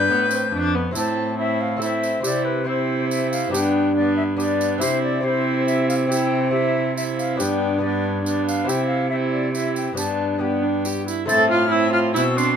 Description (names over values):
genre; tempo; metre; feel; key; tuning
classical, renaissance-style consort dance; 140 BPM; 3/4; straight; G mixolydian; A4 = 440 Hz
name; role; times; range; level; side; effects
silver concert flute; melody; 0.0-12.6 s; B4 to A6; -25 LUFS; left 4 dB; none
warm viola; second line; 0.0-12.6 s; B3 to B4; -25 LUFS; right 6 dB; none
lute; accompaniment; 0.0-12.5 s; F2 to C5; -25 LUFS; left 3 dB; none
warm viola; accompaniment; 0.0-12.6 s; B3 to D4; -27 LUFS; left 1 dB; none
rich cello; bass; 0.0-12.6 s; F2 to C3; -26 LUFS; right 2 dB; none
tambourine; percussion; 0.3-12.6 s; none; -32 LUFS; right 4 dB; none
room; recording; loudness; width
moderate studio reverb, RT60 0.6 s; minimal, uncompressed stereo recording; -19 LUFS; side -8 dB against mid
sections
1.0-11.3 A section; 11.3-12.6 A section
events
none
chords
0.0 G; 1.0 Am; 2.2 C; 3.5 G; 4.8 C; 7.4 G; 8.7 C; 10.0 G; 11.3 Am